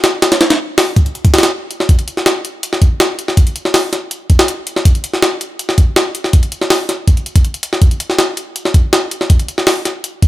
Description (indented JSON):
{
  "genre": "drum and bass",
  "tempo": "162 BPM",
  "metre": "4/4",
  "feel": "straight",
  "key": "none",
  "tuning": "none",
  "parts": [
    { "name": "jungle sampler-style drum kit", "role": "drums", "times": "0.0-10.3 s", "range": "hi-hat, kick drum, snare drum", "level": "-11 LUFS", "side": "equal", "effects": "studio ambience" }
  ],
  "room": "little or no reverb",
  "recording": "none",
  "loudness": "-11 LUFS",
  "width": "side -16 dB against mid",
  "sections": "0.0-10.3 A section",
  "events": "none",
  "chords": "none"
}